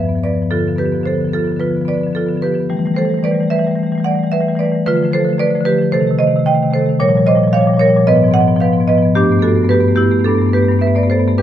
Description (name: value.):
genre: classical, contemporary piece for solo marimba.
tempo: 111 BPM.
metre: 4/4.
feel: rubato.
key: unclear.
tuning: A4 = 440 Hz.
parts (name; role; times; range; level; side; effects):
marimba with medium hard mallets; solo; 0.0-11.4 s; E2 to G5; -12 LUFS; equal; none.
room: moderate recital hall reverb, RT60 1.3 s.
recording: dark, warm production.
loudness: -12 LUFS.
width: side -11 dB against mid.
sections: 0.0-11.4 A section.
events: none.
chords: 0.0 G7; 0.5 Dm6; 2.7 Em7; 4.9 Dm6; 5.9 Cm6; 7.0 Bbm6; 8.1 G#m6; 9.2 Gadd9.